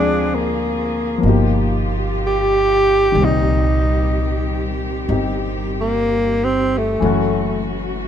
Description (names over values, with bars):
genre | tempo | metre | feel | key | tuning
jazz ballad | 62 BPM | 4/4 | swing 68% on 8ths | unclear | A4 = 440 Hz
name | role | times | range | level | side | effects
breathy tenor saxophone | melody | 0.0-7.7 s | A3 to G4 | -18 LUFS | right 1 dB | none
warm baby grand piano | accompaniment | 0.0-8.1 s | Bb2 to Ab4 | -22 LUFS | left 5 dB | none
dark symphonic cello section | sustained chords | 0.0-8.1 s | D3 to Ab4 | -26 LUFS | equal | none
upright bass | bass | 0.0-8.1 s | Gb1 to D2 | -21 LUFS | right 1 dB | none
room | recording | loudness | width
light reverb | minimal, uncompressed stereo recording | -16 LUFS | side -9 dB against mid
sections
0.0-8.1 A section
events
tenor saxophone solo 0.0-8.1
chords
0.0 Dm7b5; 1.2 G7alt; 3.2 Cm7; 7.0 Gbm7